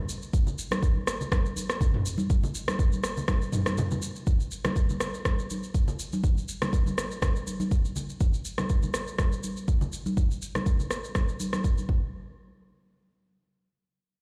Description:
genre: house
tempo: 122 BPM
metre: 4/4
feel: swing 54% on 16ths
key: none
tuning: none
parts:
  - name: deep house drum kit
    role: drums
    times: 0.1-11.9 s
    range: rim click, shaker, toms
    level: -34 LUFS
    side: equal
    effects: none
  - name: electronic kick drum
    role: drums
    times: 0.3-12.0 s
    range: none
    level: -28 LUFS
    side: equal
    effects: none
  - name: congas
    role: percussion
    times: 0.5-12.0 s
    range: none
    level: -36 LUFS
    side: equal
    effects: none
room: light reverb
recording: played on a big sound system in a bare room, large studio reverb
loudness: -28 LUFS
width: mono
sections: 0.0-4.3 A section; 4.3-12.1 B section; 12.1-14.2 C section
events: drop 0.0-4.3; break 3.8-4.3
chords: none

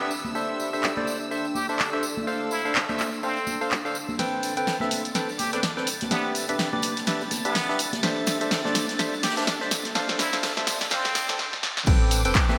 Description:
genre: piano house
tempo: 125 BPM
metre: 4/4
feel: swing 58% on 16ths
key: A minor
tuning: A4 = 439 Hz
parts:
  - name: trumpet with plunger mute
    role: melody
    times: 0.0-11.3 s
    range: B3 to G4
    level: -34 LUFS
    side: equal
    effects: delay
  - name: dark studio violin section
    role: sustained chords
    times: 0.0-12.6 s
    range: D6 to A6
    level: -40 LUFS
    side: equal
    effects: sidechain pumping
  - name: percussive organ stab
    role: riff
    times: 0.0-12.6 s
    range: C4 to G5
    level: -31 LUFS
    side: equal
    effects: chorus, cassette tape, sidechain pumping
  - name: granular cloud pad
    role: texture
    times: 0.0-12.6 s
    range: C4 to C6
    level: -37 LUFS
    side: equal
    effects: built-in reverb, analog chorus, sidechain pumping
  - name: tambourine and congas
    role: percussion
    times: 0.1-12.6 s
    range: none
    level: -36 LUFS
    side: equal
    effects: none
  - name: punchy analog drum machine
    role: drums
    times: 0.8-12.5 s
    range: crash cymbal, handclaps, hi-hat, snare drum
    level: -30 LUFS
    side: equal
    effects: gated reverb
  - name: organ-like FM bass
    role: bass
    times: 4.2-12.3 s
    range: E1 to E2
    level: -34 LUFS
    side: equal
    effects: sidechain pumping, high-pass filter
  - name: jazz brush drum kit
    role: drums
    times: 4.2-12.6 s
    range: hi-hat, ride cymbal, snare drum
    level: -38 LUFS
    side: equal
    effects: none
  - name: electronic kick drum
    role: drums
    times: 11.9-12.5 s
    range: none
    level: -23 LUFS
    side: equal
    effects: none
room: wet lush hall reverb, RT60 2.1 s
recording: bright 1980s-style digital production, high-pass filter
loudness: -25 LUFS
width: mono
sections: 0.0-4.2 A section; 4.2-11.9 B section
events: build-up 4.2-11.9; drum fill 4.2-11.4, 11.4-11.9; break 11.4-11.9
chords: 0.4 C69; 2.3 Dm7; 4.2 Am9; 6.1 Em7; 8.0 C69; 10.0 Dm7; 11.9 Am9

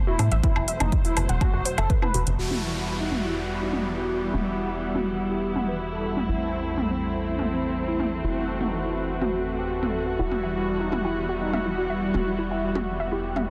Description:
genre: melodic techno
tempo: 123 BPM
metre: 4/4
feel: straight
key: E minor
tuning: A4 = 440 Hz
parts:
  - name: dark symphonic string section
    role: sustained chords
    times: 0.0-13.5 s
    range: E3 to C5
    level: -34 LUFS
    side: equal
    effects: sidechain pumping
  - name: analog drone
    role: drone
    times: 0.0-13.5 s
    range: E2 to B2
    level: -39 LUFS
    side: equal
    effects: chorus, phaser, sidechain pumping
  - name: unison lead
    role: melody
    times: 0.1-13.3 s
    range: C4 to B4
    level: -34 LUFS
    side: equal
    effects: subtle chorus, sidechain pumping, dub echo
  - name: warbly dusty pluck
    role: arpeggios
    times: 0.1-2.2, 10.2-13.5 s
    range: E4 to G5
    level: -36 LUFS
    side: equal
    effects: chorus, sidechain pumping, dub echo
  - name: tight sequencer bass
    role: bass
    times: 0.2-13.5 s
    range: E1 to A2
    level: -33 LUFS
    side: equal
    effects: tube saturation, sidechain pumping
  - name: house drum kit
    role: drums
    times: 0.2-13.5 s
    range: hi-hat, toms, woodblock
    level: -32 LUFS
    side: equal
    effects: low-pass filter on perc, low-pass filter on hats, low-pass filter on toms
  - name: electronic kick drum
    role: drums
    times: 0.4-2.0 s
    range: none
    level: -26 LUFS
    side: equal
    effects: none
  - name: brassy analog pad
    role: stabs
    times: 2.4-13.5 s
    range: G3 to F#4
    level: -35 LUFS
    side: equal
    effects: chorus, sidechain pumping, dub echo
  - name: downlifter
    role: sound effects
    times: 2.4-6.3 s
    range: none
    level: -39 LUFS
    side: equal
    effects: none
  - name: warbly tape-like pad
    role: texture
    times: 3.0-13.5 s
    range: G3 to A5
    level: -36 LUFS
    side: equal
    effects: chorus, built-in reverb, sidechain pumping
room: light reverb, digital ambience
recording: dense, heavily limited modern master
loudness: -26 LUFS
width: mono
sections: 0.0-2.4 A section; 2.4-13.5 B section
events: filter sweep on synth arpeggio sound 0.0-2.4; filter sweep on analog synth lead 2.4-13.5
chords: 0.4 F#dim; 2.4 Emadd9; 6.3 Am; 8.2 F#dim; 10.2 Emadd9

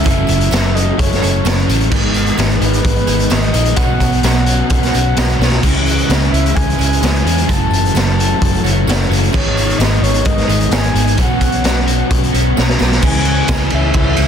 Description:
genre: rock, shoegaze and dream pop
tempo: 130 BPM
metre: 4/4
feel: straight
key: unclear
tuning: A4 = 440 Hz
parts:
  - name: breathy flute-like synth lead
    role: melody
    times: 0.0-14.3 s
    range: B4 to A5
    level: -22 LUFS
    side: left 1 dB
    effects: chorus, digital delay
  - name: electric guitar through a small old amp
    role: arpeggios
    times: 0.0-14.3 s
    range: D#3 to B3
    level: -27 LUFS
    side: left 2 dB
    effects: none
  - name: crunchy overdriven guitar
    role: riff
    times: 0.0-13.0 s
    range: F#2 to C#4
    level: -23 LUFS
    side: equal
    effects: none
  - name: direct-recorded clean electric guitar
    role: riff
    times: 0.0-14.3 s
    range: F#2 to A4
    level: -21 LUFS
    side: right 13 dB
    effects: reverse reverb
  - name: overdriven semi-hollow guitar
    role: riff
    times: 0.0-14.3 s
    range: F#2 to D#4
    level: -21 LUFS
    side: left 11 dB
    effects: ensemble chorus
  - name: tambourine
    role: percussion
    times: 0.0-14.3 s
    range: none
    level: -35 LUFS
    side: right 15 dB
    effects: none
  - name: vintage muted fingered electric bass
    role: bass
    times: 0.1-14.3 s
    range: F#1 to E2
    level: -16 LUFS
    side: equal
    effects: none
  - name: raw garage drum kit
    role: drums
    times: 0.1-14.3 s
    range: crash cymbal, hi-hat, kick drum, ride cymbal, snare drum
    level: -16 LUFS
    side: equal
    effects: none
room: small room ambience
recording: dense, heavily limited modern master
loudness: -11 LUFS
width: side -8 dB against mid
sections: 0.0-13.0 A section; 13.0-14.3 B section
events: drum fill 5.4, 12.6-13.0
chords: 0.1 F#m7; 1.9 G#m; 3.8 Bsus2; 5.6 C#m; 7.5 F#m7; 9.3 G#m; 11.2 Bsus2; 13.0 C#m

